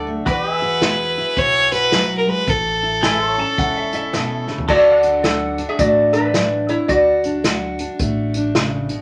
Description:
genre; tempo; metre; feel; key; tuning
honky-tonk and classic country; 108 BPM; 4/4; swing 62% on 8ths; unclear; A4 = 441 Hz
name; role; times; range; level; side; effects
lap resonator guitar; second line; 0.0-8.9 s; D4 to A5; -19 LUFS; equal; none
picked steel-string acoustic guitar; accompaniment; 0.0-9.0 s; A2 to F#4; -27 LUFS; equal; none
pedal steel guitar; sustained chords; 0.0-9.0 s; F#4 to F#5; -28 LUFS; equal; none
upright bass; bass; 0.0-8.9 s; E1 to E2; -31 LUFS; equal; none
clear fiddle; melody; 0.3-4.5 s; A4 to C#5; -21 LUFS; equal; none
unplugged drum kit; drums; 0.3-9.0 s; crash cymbal, hi-hat, kick drum, snare drum, toms; -24 LUFS; equal; none
room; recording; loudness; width
wet studio ambience, RT60 0.5 s; none; -18 LUFS; mono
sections
0.0-4.7 A section; 4.7-9.0 B section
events
drum fill 4.4; resonator guitar played with a steel bar solo 4.7-9.0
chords
0.3 Eadd9; 2.5 A; 4.7 D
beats
| 0.26 0.82 1.37 1.92 | 2.48 3.03 3.58 4.13 | 4.69 5.24 5.79 6.34 | 6.90 7.45 8.00 8.55

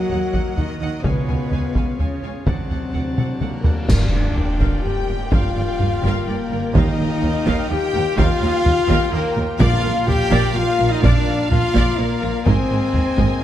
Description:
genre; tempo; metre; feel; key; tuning
cinematic, epic orchestral film score; 126 BPM; 3/4; straight; unclear; A4 = 440 Hz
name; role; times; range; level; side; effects
warm symphonic violin section; second line; 0.0-13.4 s; A#4 to G5; -30 LUFS; left 2 dB; none
mellow French horn section; sustained chords; 0.0-13.4 s; A#3 to G4; -24 LUFS; left 5 dB; none
pipe organ, cornet; sustained chords; 0.0-13.4 s; F#3 to A5; -32 LUFS; left 1 dB; none
warm studio cello section; bass; 0.0-13.3 s; Eb2 to F#3; -26 LUFS; right 2 dB; none
rich studio violin section; melody; 0.1-13.4 s; F5 to G#5; -32 LUFS; left 3 dB; none
rich symphonic viola section; accompaniment; 0.1-13.4 s; F4 to E#5; -31 LUFS; right 1 dB; none
rich symphonic double bass section; bass; 0.1-13.4 s; G1 to D#2; -24 LUFS; right 3 dB; none
taiko ensemble; drums; 0.1-13.4 s; none; -21 LUFS; equal; none
cymbal swell, clash cymbals and concert bass drum; percussion; 1.0-4.8, 12.5-13.4 s; none; -25 LUFS; equal; none
timpani; percussion; 1.0-1.7, 6.8-7.4, 9.6-10.3 s; Bb2 to Eb3; -26 LUFS; right 1 dB; none
mellow trumpet; stabs; 3.4-13.4 s; Bb3 to G4; -28 LUFS; right 1 dB; none
impact; sound effects; 3.9-5.3 s; none; -30 LUFS; equal; none
room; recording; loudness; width
moderate concert hall reverb, RT60 2.3 s; none; -16 LUFS; side -11 dB against mid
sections
0.0-3.9 A section; 3.9-13.4 B section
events
drum fill 3.2-3.9; band accent 3.9-4.4; impact 3.9-5.3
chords
0.0 D#m; 1.1 C#; 2.5 D7; 3.9 Gm7; 6.8 Ebadd9; 9.6 Bb; 12.5 Abadd9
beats
0.10 0.57 | 1.05 1.52 2.00 | 2.48 2.95 3.43 | 3.90 4.38 4.85 | 5.33 5.80 6.28 | 6.75 7.23 7.70 | 8.18 8.65 9.13 | 9.61 10.08 10.56 | 11.04 11.51 11.99 | 12.46 12.94 13.41

